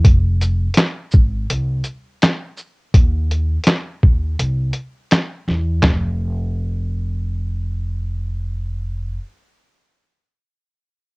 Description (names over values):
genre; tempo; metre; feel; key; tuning
lo-fi hip hop; 83 BPM; 4/4; swing 61% on 16ths; F minor; A4 = 439 Hz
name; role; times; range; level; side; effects
upright bass; bass; 0.0-9.2 s; F1 to E2; -20 LUFS; equal; none
lo-fi sampler-style drum kit; drums; 0.0-6.0 s; handclaps, hi-hat, kick drum, shaker, snare drum, toms; -13 LUFS; equal; cassette tape
room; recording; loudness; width
little or no reverb; home recording on cassette; -17 LUFS; side -32 dB against mid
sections
0.0-5.8 A section; 5.8-8.7 B section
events
none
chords
none